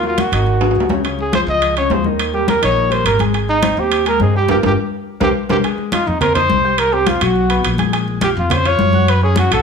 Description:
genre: Afro-Cuban jazz.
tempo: 209 BPM.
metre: 4/4.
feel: straight.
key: Ab major.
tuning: A4 = 439 Hz.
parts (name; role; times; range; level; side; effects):
mellow trumpet; melody; 0.0-9.6 s; Eb4 to Eb5; -17 LUFS; right 1 dB; plate reverb.
warm grand piano; accompaniment; 0.0-9.6 s; Db3 to Ab6; -22 LUFS; left 3 dB; none.
upright bass; bass; 0.0-9.6 s; G1 to G2; -19 LUFS; right 1 dB; none.
congas; percussion; 0.0-9.6 s; none; -21 LUFS; left 4 dB; none.
timbales; percussion; 0.2-9.6 s; none; -22 LUFS; right 6 dB; none.
room: moderate large studio reverb, RT60 1.1 s.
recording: studio ambience.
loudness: -13 LUFS.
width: side -6 dB against mid.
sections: 0.0-5.6 A section; 5.6-9.6 B section.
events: drum fill 0.6-1.0; band accent 4.5-5.6.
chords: 0.5 Ab5; 1.0 Db; 2.2 Eb7; 3.3 Abmaj7; 4.5 Gm7; 5.1 C5; 5.6 Fm9; 6.8 C5; 7.4 B5; 7.9 Bbm7; 9.1 Gb5.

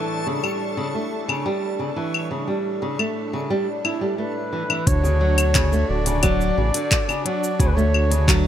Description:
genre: folktronica.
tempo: 88 BPM.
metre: 4/4.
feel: straight.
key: D major.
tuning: A4 = 440 Hz.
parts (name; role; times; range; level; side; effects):
musette accordion; sustained chords; 0.0-8.5 s; A2 to F#4; -30 LUFS; right 3 dB; none.
flamenco guitar; arpeggios; 0.0-8.5 s; C#3 to E4; -25 LUFS; equal; ping-pong delay.
backwards swelling texture; texture; 0.0-4.9 s; A4 to C#6; -33 LUFS; left 2 dB; built-in reverb.
organic electronic drum kit; drums; 0.4-8.4 s; cabasa, claves, handclaps, hi-hat; -24 LUFS; left 3 dB; none.
mellow flugelhorn; melody; 4.2-8.4 s; B4 to D5; -25 LUFS; left 2 dB; ping-pong delay.
round analog bass; bass; 4.9-8.5 s; D1 to D2; -20 LUFS; equal; none.
electronic kick drum; drums; 4.9-8.4 s; none; -21 LUFS; equal; none.
room: light reverb.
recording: none.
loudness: -19 LUFS.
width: side -10 dB against mid.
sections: 0.0-4.9 A section; 4.9-8.5 B section.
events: none.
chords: 0.0 A7; 4.9 Dmaj7.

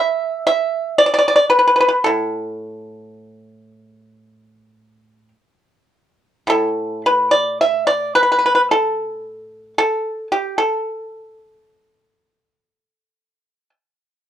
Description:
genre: chinese traditional, Chinese solo plucked strings.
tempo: 52-59 BPM.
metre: 4/4.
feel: rubato.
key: A shang mode.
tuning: A4 = 440 Hz.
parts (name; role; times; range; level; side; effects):
pipa; solo; 0.0-13.7 s; A2 to E5; -15 LUFS; equal; none.
room: light reverb.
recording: worn, warbling old tape, cassette tape, warbly pitch drift.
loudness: -15 LUFS.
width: side -10 dB against mid.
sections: 0.0-6.5 A section; 6.5-14.3 B section.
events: none.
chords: none.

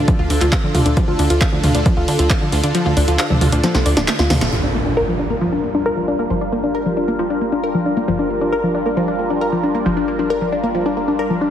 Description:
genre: uplifting trance.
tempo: 135 BPM.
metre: 4/4.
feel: straight.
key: G minor.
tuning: A4 = 440 Hz.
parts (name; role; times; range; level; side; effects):
supersaw pad; sustained chords; 0.0-11.5 s; D3 to Bb4; -22 LUFS; equal; phaser, sidechain pumping, low-pass filter.
wide unison pluck; arpeggios; 0.0-11.5 s; F3 to F5; -19 LUFS; left 2 dB; sidechain pumping, digital delay.
plucky analog bass; bass; 0.0-11.5 s; D1 to D2; -21 LUFS; right 1 dB; sidechain pumping.
electronic kick drum; drums; 0.1-2.4 s; none; -17 LUFS; right 1 dB; none.
punchy analog drum machine; drums; 0.1-4.5 s; handclaps, hi-hat, snare drum, toms; -20 LUFS; right 1 dB; sidechain pumping on hats, sidechain pumping on toms.
impact; sound effects; 4.5-6.3 s; none; -24 LUFS; right 1 dB; none.
room: moderate digital room reverb, RT60 1.1 s.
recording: heavily compressed radio sound.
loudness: -15 LUFS.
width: side -10 dB against mid.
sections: 0.0-4.5 A section; 4.5-11.5 B section.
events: kick drops out 2.7-4.5; drum fill 3.6-4.5; band accent 4.4; impact 4.5-6.3; filter sweep on synth arpeggio sound 4.5-11.5.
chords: 0.0 Dm; 4.5 Gm7.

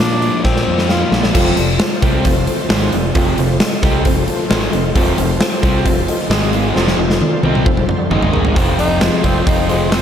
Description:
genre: classic rock.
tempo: 133 BPM.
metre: 4/4.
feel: straight.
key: F mixolydian.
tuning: A4 = 440 Hz.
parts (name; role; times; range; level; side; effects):
growling tenor saxophone; melody; 0.0-1.2, 8.8-10.0 s; Ab3 to F4; -20 LUFS; equal; slapback echo.
sludgy distorted guitar; riff; 0.0-10.0 s; F2 to C4; -20 LUFS; left 6 dB; overdrive.
growling fingered electric bass; bass; 0.0-10.0 s; F1 to Bb2; -20 LUFS; equal; overdrive.
huge arena drum kit; drums; 0.0-10.0 s; crash cymbal, hi-hat, kick drum, snare drum, toms; -16 LUFS; equal; none.
bright tonewheel organ; sustained chords; 1.0-8.6 s; B3 to E5; -28 LUFS; right 1 dB; none.
mellow reed electric piano; accompaniment; 1.3-10.0 s; Eb4 to F5; -22 LUFS; left 3 dB; fast tremolo, slapback echo.
cranked stack guitar; riff; 1.3-10.0 s; F2 to F4; -22 LUFS; right 10 dB; overdrive, slapback echo.
room: moderate lush hall reverb, RT60 2.0 s.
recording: big arena sound.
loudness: -12 LUFS.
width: side -9 dB against mid.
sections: 0.0-1.4 A section; 1.4-8.6 B section; 8.6-10.0 C section.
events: drum fill 0.4-1.4, 6.8-8.6; tenor saxophone solo 8.6-10.0.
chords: 0.0 Bbadd9; 1.4 F; 6.3 Ab5; 6.8 F; 8.1 Ab5; 8.6 F.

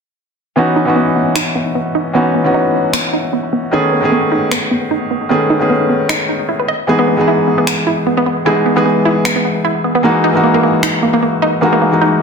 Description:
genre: future bass.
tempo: 152 BPM.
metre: 4/4.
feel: swing 54% on 16ths, half-time.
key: C# minor.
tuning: A4 = 440 Hz.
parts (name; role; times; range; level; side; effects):
felt-muted upright piano; accompaniment; 0.6-12.2 s; D#3 to G#4; -14 LUFS; equal; low-pass filter, ping-pong delay.
wide unison pluck; arpeggios; 0.6-12.1 s; A#3 to D#5; -16 LUFS; right 1 dB; ping-pong delay.
electronic finger snaps; drums; 1.4-10.9 s; none; -19 LUFS; left 1 dB; soft clipping on snare.
room: moderate digital room reverb, RT60 1.1 s, digital ambience.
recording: dense, heavily limited modern master.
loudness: -12 LUFS.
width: side -5 dB against mid.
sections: 0.6-12.2 A section.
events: filter sweep on synth arpeggio sound 0.6-12.2.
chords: 0.6 C#m11; 3.7 Amaj9#11; 6.7 Emaj7; 10.0 F#13.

